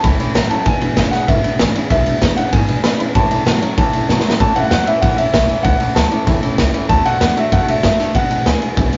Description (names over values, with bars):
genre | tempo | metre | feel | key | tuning
rockabilly | 192 BPM | 4/4 | straight | A major | A4 = 440 Hz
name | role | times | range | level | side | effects
warm upright piano | melody | 0.0-8.9 s | E5 to B5 | -21 LUFS | equal | none
picked steel-string acoustic guitar | accompaniment | 0.0-9.0 s | E2 to F#4 | -28 LUFS | equal | none
tack piano | accompaniment | 0.0-9.0 s | B4 to B5 | -34 LUFS | equal | none
twangy electric guitar | riff | 0.0-9.0 s | E2 to B3 | -26 LUFS | equal | none
upright bass | bass | 0.0-9.0 s | E1 to C#3 | -23 LUFS | equal | none
raw garage drum kit | drums | 0.0-9.0 s | kick drum, ride cymbal, snare drum | -18 LUFS | equal | none
room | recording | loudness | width
moderate small room reverb, RT60 0.5 s | rough rehearsal-room recording, tube saturation, nothing above 7.5 kHz | -15 LUFS | mono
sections
0.0-4.4 A section; 4.4-9.0 B section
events
drum fill 4.1-4.4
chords
0.0 A; 0.7 E7; 3.2 A; 6.9 D; 8.2 E7